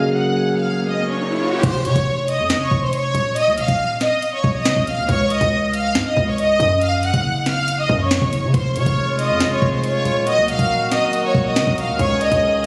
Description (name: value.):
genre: hip hop, drill.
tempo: 139 BPM.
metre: 4/4.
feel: half-time.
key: F phrygian.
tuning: A4 = 440 Hz.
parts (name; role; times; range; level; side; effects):
rich studio violin section; melody; 0.0-12.7 s; C5 to Gb6; -22 LUFS; equal; low-pass filter, tape echo.
felt-muted upright piano; accompaniment; 0.0-1.7 s; Db3 to Ab4; -23 LUFS; equal; low-pass filter.
warm brass ensemble; sustained chords; 0.0-1.6, 8.5-12.7 s; C3 to Ab4; -26 LUFS; equal; low-pass filter.
riser; sound effects; 0.7-1.6 s; none; -28 LUFS; equal; none.
distorted 808-style bass; bass; 1.6-12.7 s; Eb1 to Db3; -24 LUFS; equal; distortion.
drill drum kit; drums; 1.6-12.4 s; crash cymbal, hi-hat, kick drum, snare drum; -24 LUFS; equal; none.
room: moderate concert hall reverb, RT60 2.1 s.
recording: recorded on a phone in the room, studio reverb, compression.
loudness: -19 LUFS.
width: mono.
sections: 0.0-1.6 A section; 1.6-12.7 B section.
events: riser 0.7-1.6.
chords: 0.0 Gbadd9; 1.6 F5; 3.4 N.C.; 5.1 Dbsus2; 6.8 Gb5; 8.5 Fm7; 10.3 Ebm; 12.0 Dbsus2.